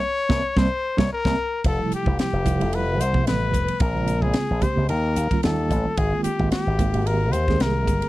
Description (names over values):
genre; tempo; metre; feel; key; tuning
electric jazz fusion; 111 BPM; 4/4; swing 54% on 16ths; unclear; A4 = 440 Hz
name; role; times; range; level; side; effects
clear trumpet; melody; 0.0-8.1 s; G4 to Db5; -25 LUFS; left 3 dB; slapback echo
reed electric piano; accompaniment; 0.3-8.1 s; C3 to Ab4; -26 LUFS; right 4 dB; fast tremolo
slap bass with an envelope filter; bass; 0.3-8.0 s; F1 to Eb2; -23 LUFS; equal; none
crisp fusion drum kit; drums; 0.3-8.1 s; hi-hat, kick drum, ride cymbal, snare drum; -26 LUFS; equal; none
room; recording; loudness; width
little or no reverb; dry, close 1970s-style studio recording; -20 LUFS; side -17 dB against mid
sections
0.0-1.7 A section; 1.7-8.1 B section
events
band accent 0.0-1.7; drum fill 0.6-1.7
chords
0.0 C5; 1.7 Fmaj9; 3.8 Bbm9; 4.9 Eb9; 6.0 Ab6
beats
0.03 0.57 1.11 | 1.65 2.19 2.73 3.28 | 3.82 4.36 4.90 5.44 | 5.98 6.53 7.07 7.61